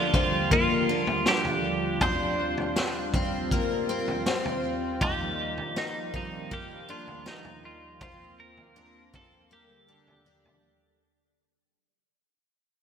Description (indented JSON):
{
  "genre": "dream pop",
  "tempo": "80 BPM",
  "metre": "4/4",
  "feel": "straight",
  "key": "G minor",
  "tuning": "A4 = 438 Hz",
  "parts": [
    { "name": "clean electric guitar", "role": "melody", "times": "0.0-10.6 s", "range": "Eb4 to C5", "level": "-30 LUFS", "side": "equal", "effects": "wide subtle chorus, digital delay" },
    { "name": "warm analog pad", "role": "sustained chords", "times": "0.0-11.0 s", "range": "D3 to A4", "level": "-33 LUFS", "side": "right 2 dB", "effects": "chorus, tremolo" },
    { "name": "picked twelve-string acoustic guitar", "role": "arpeggios", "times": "0.0-11.0 s", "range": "Bb3 to Eb4", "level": "-31 LUFS", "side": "left 3 dB", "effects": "lush chorus, digital delay" },
    { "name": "raw garage drum kit", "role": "drums", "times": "0.1-10.6 s", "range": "kick drum, snare drum, toms", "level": "-30 LUFS", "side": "equal", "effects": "none" }
  ],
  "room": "wet lush hall reverb, RT60 2.8 s",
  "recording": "bright 1980s-style digital production",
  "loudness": "-25 LUFS",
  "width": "side -7 dB against mid",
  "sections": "0.0-11.0 A section",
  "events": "fade-out 0.0-11.0",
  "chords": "0.0 Gm7; 2.0 Csus4; 5.0 Ebadd9; 8.0 Fsus4; 9.5 Gmadd9"
}